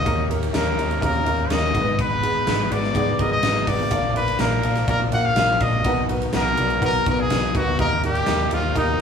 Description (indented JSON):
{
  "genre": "piano-driven pop",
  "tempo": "124 BPM",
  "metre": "4/4",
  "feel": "straight",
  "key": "unclear",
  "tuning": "A4 = 440 Hz",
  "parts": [
    { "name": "bright trumpet", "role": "melody", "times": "0.0-9.0 s", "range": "Eb4 to Gb5", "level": "-23 LUFS", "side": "equal", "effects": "none" },
    { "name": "warm upright piano", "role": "accompaniment", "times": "0.0-9.0 s", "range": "Ab2 to F5", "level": "-25 LUFS", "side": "left 1 dB", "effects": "none" },
    { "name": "bright tonewheel organ", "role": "sustained chords", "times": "0.0-9.0 s", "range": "Eb3 to Bb4", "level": "-34 LUFS", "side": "left 3 dB", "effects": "none" },
    { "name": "fingered electric bass", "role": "bass", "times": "0.1-9.0 s", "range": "Ab1 to Eb2", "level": "-25 LUFS", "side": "equal", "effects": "none" },
    { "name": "huge arena drum kit", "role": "drums", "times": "0.1-8.9 s", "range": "hi-hat, kick drum, ride cymbal, snare drum", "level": "-25 LUFS", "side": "equal", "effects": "none" }
  ],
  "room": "moderate studio ambience, RT60 0.4 s",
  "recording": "band playing live in one room, small room reverb",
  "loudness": "-18 LUFS",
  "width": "side -7 dB against mid",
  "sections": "0.0-9.0 A section",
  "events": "none",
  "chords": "0.1 Eb7; 1.8 Abm; 3.9 Bb; 5.9 Bmaj7; 7.8 Eb"
}